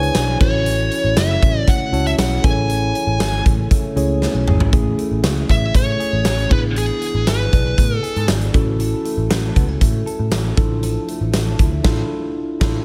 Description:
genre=1980s-style pop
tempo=118 BPM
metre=4/4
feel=straight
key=A major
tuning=A4 = 440 Hz
part: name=high-gain lead guitar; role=melody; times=0.0-8.3 s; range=G#4 to G#5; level=-25 LUFS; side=equal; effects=distortion
part: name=mellow tine electric piano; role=accompaniment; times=0.0-12.8 s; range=A3 to D5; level=-26 LUFS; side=equal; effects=none
part: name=direct-recorded clean electric guitar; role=riff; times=0.0-12.3 s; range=E3 to A4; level=-32 LUFS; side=equal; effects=subtle chorus, tape echo
part: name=vintage muted picked electric bass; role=bass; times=0.0-12.8 s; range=F#1 to A2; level=-22 LUFS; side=equal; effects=none
part: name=huge arena drum kit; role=drums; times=0.0-12.8 s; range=crash cymbal, hi-hat, kick drum, snare drum, tambourine, toms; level=-21 LUFS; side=equal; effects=none
room=small room ambience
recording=none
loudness=-18 LUFS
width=mono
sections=0.0-4.7 A section; 4.7-12.8 B section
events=drum fill 4.2-4.7; band accent 11.8-12.8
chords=0.4 F#m7; 2.4 Amaj7; 6.5 E7; 8.5 F#m7/A; 10.6 Dmadd9/A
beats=0.15 | 0.66 1.17 1.68 2.19 | 2.70 3.21 3.71 4.22 | 4.73 5.24 5.75 6.25 | 6.76 7.27 7.78 8.29 | 8.80 9.31 9.81 10.32 | 10.83 11.34 11.85 12.36

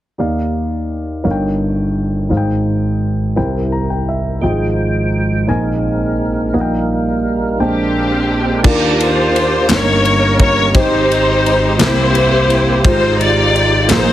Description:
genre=slow gospel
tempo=57 BPM (dotted quarters)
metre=6/8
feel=straight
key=Eb major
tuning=A4 = 442 Hz
part: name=dark concert grand piano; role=accompaniment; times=0.2-14.1 s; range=G1 to Bb5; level=-15 LUFS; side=equal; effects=none
part: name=percussive tonewheel organ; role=sustained chords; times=4.4-14.1 s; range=G2 to G5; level=-20 LUFS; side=right 2 dB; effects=slow rotary speaker, overdrive, chorus vibrato
part: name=dark symphonic string section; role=melody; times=7.6-14.1 s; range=C4 to D5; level=-14 LUFS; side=left 1 dB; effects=none
part: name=modern studio drum kit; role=drums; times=8.6-14.1 s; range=crash cymbal, kick drum, ride cymbal, snare drum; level=-17 LUFS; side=equal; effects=none
part: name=group handclap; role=percussion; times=9.7-14.1 s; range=none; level=-22 LUFS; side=left 4 dB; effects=none
room=studio reverb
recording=heavily compressed radio sound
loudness=-12 LUFS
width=side -13 dB against mid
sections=0.2-8.6 A section; 8.6-14.1 B section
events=grand piano fill 3.4-4.4; tonewheel organ fill 7.6-8.6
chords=0.2 Ebmaj9; 1.3 Eb7/G; 2.3 Abmaj7; 3.4 C7; 4.4 Fm9/Ab; 5.5 Bb9sus4; 6.5 Eb/Bb; 7.6 Bb13; 8.6 Ebmaj9; 9.7 Eb7/G; 10.7 Abmaj7; 11.8 C7; 12.8 Fm9/Ab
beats=| 0.19 1.25 | 2.31 3.37 | 4.43 5.48 | 6.54 7.59 | 8.64 9.70 | 10.75 11.80 | 12.85 13.89

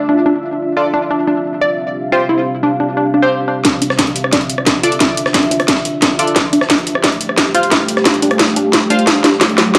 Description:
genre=dark technical drum and bass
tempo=177 BPM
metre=4/4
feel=straight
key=D minor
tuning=A4 = 440 Hz
part: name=deep dark ambient pad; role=sustained chords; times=0.0-9.8 s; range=A3 to F5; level=-21 LUFS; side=equal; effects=chorus, built-in reverb, sidechain pumping
part: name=analog pluck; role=arpeggios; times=0.1-9.8 s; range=D4 to D5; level=-19 LUFS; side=equal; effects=chorus, sidechain pumping, digital delay
part: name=band-passed chord stab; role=stabs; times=0.8-9.0 s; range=C4 to F5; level=-21 LUFS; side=equal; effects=chorus, phaser, cassette tape, digital delay
part: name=breakbeat sampler-style drum kit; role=drums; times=3.6-9.8 s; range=hi-hat, snare drum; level=-26 LUFS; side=equal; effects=none
part: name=drum and bass drum kit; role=drums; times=3.6-9.8 s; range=hi-hat, rim click, snare drum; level=-16 LUFS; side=equal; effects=high-pass filter on snare, high-pass filter on hats, high-pass filter on room
part: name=electronic kick drum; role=drums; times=3.6-9.8 s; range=none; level=-26 LUFS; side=equal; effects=high-pass filter on kick
part: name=riser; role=sound effects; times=9.3-9.8 s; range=none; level=-26 LUFS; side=equal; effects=none
room=moderate digital room reverb, RT60 1.0 s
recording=dark, warm production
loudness=-14 LUFS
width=mono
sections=0.0-3.6 A section; 3.6-9.8 B section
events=filter sweep on synth arpeggio sound 0.0-3.6; build-up 3.6-9.8; drum fill 3.6-9.8; riser 9.3-9.8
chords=0.0 Dmadd9; 0.9 Csus4; 3.6 Dmadd9; 6.4 Fadd9; 9.1 Dmadd9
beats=0.26 0.60 | 0.94 1.28 1.61 1.95 | 2.29 2.63 2.97 3.31 | 3.65 3.99 4.33 4.67 | 5.00 5.34 5.68 6.02 | 6.36 6.70 7.04 7.38 | 7.72 8.05 8.39 8.73 | 9.07 9.41 9.75

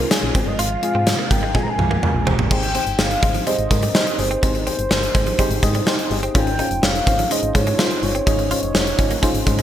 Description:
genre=1980s-style pop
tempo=125 BPM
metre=4/4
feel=straight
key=Ab major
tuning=A4 = 440 Hz
part: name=mellow horn-like synth lead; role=melody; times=0.0-9.6 s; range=Ab4 to Bb5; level=-24 LUFS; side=equal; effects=chorus, digital delay
part: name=mellow FM electric piano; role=accompaniment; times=0.0-9.6 s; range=Ab2 to Eb5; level=-24 LUFS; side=left 1 dB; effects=chorus, phaser
part: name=phased string machine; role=sustained chords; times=0.0-2.5 s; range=C3 to F4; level=-30 LUFS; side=right 1 dB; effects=ensemble chorus, phaser
part: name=direct-recorded clean electric guitar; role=riff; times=0.0-9.6 s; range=F3 to F4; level=-30 LUFS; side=right 3 dB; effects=wide subtle chorus
part: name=solid FM bass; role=bass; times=0.0-9.6 s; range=F1 to Ab2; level=-24 LUFS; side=equal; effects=none
part: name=gated 80s drum kit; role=drums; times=0.1-9.6 s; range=crash cymbal, hi-hat, kick drum, snare drum, tambourine, toms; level=-19 LUFS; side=equal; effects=gated reverb
room=light reverb, studio ambience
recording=bright 1980s-style digital production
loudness=-16 LUFS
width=side -11 dB against mid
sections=0.0-2.5 A section; 2.5-9.6 B section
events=drum fill 1.5-2.5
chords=0.3 Fm; 2.5 Abmaj7; 6.3 Dbmaj9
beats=0.11 | 0.59 1.07 1.55 2.03 | 2.51 2.99 3.47 3.95 | 4.43 4.91 5.39 5.87 | 6.35 6.83 7.31 7.79 | 8.27 8.75 9.23

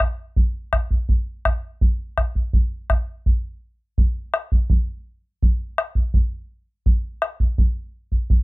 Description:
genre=andean folk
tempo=83 BPM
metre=2/4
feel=straight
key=none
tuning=none
part: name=bombo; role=percussion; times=0.0-8.4 s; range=none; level=-18 LUFS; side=equal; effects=none
room=little or no reverb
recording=close, detailed microphones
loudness=-20 LUFS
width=side -22 dB against mid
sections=0.0-3.3 A section; 3.3-8.4 B section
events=none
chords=none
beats=| 0.36 1.08 | 1.81 2.53 | 3.25 3.98 | 4.70 5.42 | 6.14 6.85 | 7.57 8.29

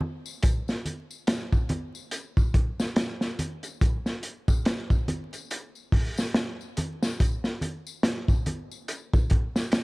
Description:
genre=trip hop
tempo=71 BPM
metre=4/4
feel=swing 58% on 16ths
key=none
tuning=none
part: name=congas and tambourine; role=percussion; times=0.0-9.8 s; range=none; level=-35 LUFS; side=equal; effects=none
part: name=crunchy breakbeat drum kit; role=drums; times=0.4-9.8 s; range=hi-hat, kick drum, snare drum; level=-24 LUFS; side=equal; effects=none
room=small room ambience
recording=dark, warm production, vinyl crackle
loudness=-25 LUFS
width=side -26 dB against mid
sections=0.0-9.8 A section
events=none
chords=none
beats=| 0.43 1.28 2.12 2.97 | 3.81 4.66 5.50 6.35 | 7.19 8.04 8.88 9.73

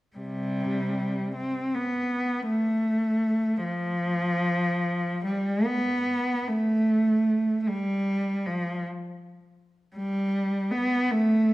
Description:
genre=classical, free, expressive piece for unaccompanied cello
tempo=29-56 BPM (dotted quarters)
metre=6/8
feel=rubato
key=unclear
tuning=A4 = 441 Hz
part: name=clear cello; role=solo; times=0.2-11.5 s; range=C3 to C4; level=-24 LUFS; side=equal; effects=none
room=moderate recital hall reverb, RT60 1.4 s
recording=none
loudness=-24 LUFS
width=side -17 dB against mid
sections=0.2-5.2 A section; 5.2-11.5 B section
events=none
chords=none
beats=| 0.16 1.35 | 2.47 3.66 | 5.24 6.50 | 7.70 8.87 | 9.99 11.13

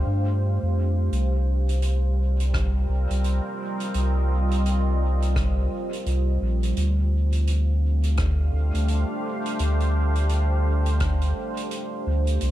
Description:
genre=ambient dub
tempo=85 BPM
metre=4/4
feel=swing 60% on 16ths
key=unclear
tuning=A4 = 440 Hz
part: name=deep dark ambient pad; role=sustained chords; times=0.0-12.5 s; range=G3 to F5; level=-29 LUFS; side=right 1 dB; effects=chorus, built-in reverb
part: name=warm sub bass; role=bass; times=0.0-12.5 s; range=Bb1 to G2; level=-21 LUFS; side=equal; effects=none
part: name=soft-mallet drum kit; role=drums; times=1.1-12.5 s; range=hi-hat, rim click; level=-37 LUFS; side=right 2 dB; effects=dub echo
part: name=electronic kick drum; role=drums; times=2.5-11.2 s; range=none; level=-29 LUFS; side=equal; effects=none
room=studio reverb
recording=dark, warm production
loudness=-21 LUFS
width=side -14 dB against mid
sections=0.0-12.4 A section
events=none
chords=0.0 Dm7; 1.1 Cm7; 6.8 Dm7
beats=0.42 | 1.12 1.83 2.54 3.24 | 3.95 4.65 5.36 6.07 | 6.77 7.48 8.18 8.89 | 9.59 10.30 11.01 11.71 | 12.42

